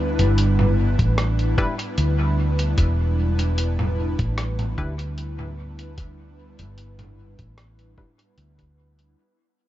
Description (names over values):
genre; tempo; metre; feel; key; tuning
ambient dub; 75 BPM; 4/4; straight; E minor; A4 = 440 Hz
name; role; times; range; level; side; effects
airy breathy pad; sustained chords; 0.0-9.2 s; G3 to B4; -28 LUFS; equal; chorus
hollow-body short-scale fingered electric bass; bass; 0.0-9.1 s; E1 to D2; -21 LUFS; equal; tube saturation
lo-fi sampler-style drum kit; drums; 0.2-9.1 s; hi-hat, rim click, toms; -29 LUFS; equal; none
electronic kick drum; drums; 1.0-8.7 s; none; -24 LUFS; equal; none
filtered dub chord stab; stabs; 1.6-8.1 s; G3 to B4; -33 LUFS; left 2 dB; chorus, dub echo
room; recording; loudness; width
little or no reverb; nothing above 7.8 kHz; -19 LUFS; side -14 dB against mid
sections
0.0-9.2 A section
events
fade-out 0.0-9.2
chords
0.0 Em7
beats
0.38 1.18 1.98 | 2.78 3.58 4.38 5.18 | 5.98 6.78 7.58 8.38